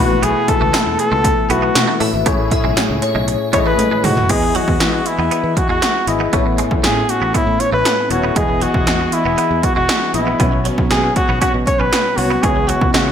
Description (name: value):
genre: 1980s-style pop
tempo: 118 BPM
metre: 4/4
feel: straight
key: E major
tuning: A4 = 440 Hz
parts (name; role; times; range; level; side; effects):
- warm flugelhorn; melody; 0.0-13.1 s; E4 to C#5; -18 LUFS; equal; digital delay
- bright tine electric piano; accompaniment; 0.0-13.1 s; A2 to D#5; -21 LUFS; left 4 dB; ensemble chorus
- brassy analog pad; sustained chords; 0.0-13.1 s; C#3 to D#5; -26 LUFS; right 3 dB; chorus
- direct-recorded clean electric guitar; riff; 0.0-13.1 s; F#3 to C#4; -25 LUFS; right 6 dB; ensemble chorus
- fretless electric bass; bass; 0.0-13.1 s; D#1 to E3; -22 LUFS; equal; none
- 80s electronic pad drums; drums; 0.2-13.1 s; crash cymbal, hi-hat, kick drum, snare drum, tambourine, toms; -18 LUFS; right 1 dB; gated reverb on snare and toms, gated reverb
- shimmering bell with halo; second line; 2.0-4.0 s; C#5 to E5; -24 LUFS; left 4 dB; ensemble chorus, digital delay
room: wet plate reverb, RT60 1.1 s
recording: bright 1980s-style digital production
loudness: -13 LUFS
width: side -8 dB against mid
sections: 0.0-4.3 A section; 4.3-13.1 B section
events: drum fill 3.8-4.3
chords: 0.0 B7sus4; 2.3 Amaj7; 4.3 Emaj7; 6.3 Aadd9; 8.4 Emaj7; 10.4 Bsus2; 12.4 C#m7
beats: | 0.23 0.74 1.25 1.75 | 2.26 2.77 3.28 3.79 | 4.30 4.80 5.31 5.82 | 6.33 6.84 7.35 7.86 | 8.36 8.87 9.38 9.89 | 10.40 10.91 11.41 11.92 | 12.43 12.94